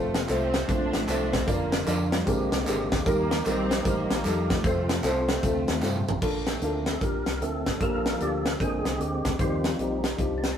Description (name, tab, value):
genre	uptempo gospel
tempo	152 BPM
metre	4/4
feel	swing 64% on 8ths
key	Bb major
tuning	A4 = 440 Hz
part	warm studio string section	melody	0.0-6.2 s	C3 to D4	-31 LUFS	right 1 dB	none
part	dark upright piano	accompaniment	0.0-10.5 s	Bb2 to D5	-29 LUFS	left 1 dB	none
part	percussive tonewheel organ	sustained chords	0.0-10.6 s	D3 to D5	-33 LUFS	equal	slow rotary speaker
part	deep dub fingered electric bass	bass	0.0-10.5 s	F1 to G2	-32 LUFS	equal	none
part	tight funk drum kit	drums	0.1-10.5 s	crash cymbal, hi-hat, kick drum, snare drum, toms	-28 LUFS	equal	none
part	tambourine and handclaps	percussion	0.1-6.1 s	none	-38 LUFS	right 1 dB	none
part	dark French horn section	sustained chords	6.2-10.6 s	none	barely audible	none	none
room	light reverb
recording	rough rehearsal-room recording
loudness	-24 LUFS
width	side -9 dB against mid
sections	0.0-6.2 A section; 6.2-10.6 B section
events	drum fill 5.8-6.2; tonewheel organ solo 6.2-10.6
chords	0.0 F; 1.5 Bb/F; 2.3 Bb13; 3.1 Eb; 4.6 F; 6.2 Bbmaj7; 7.8 Gm7/Bb; 8.6 Bb9; 9.4 Eb69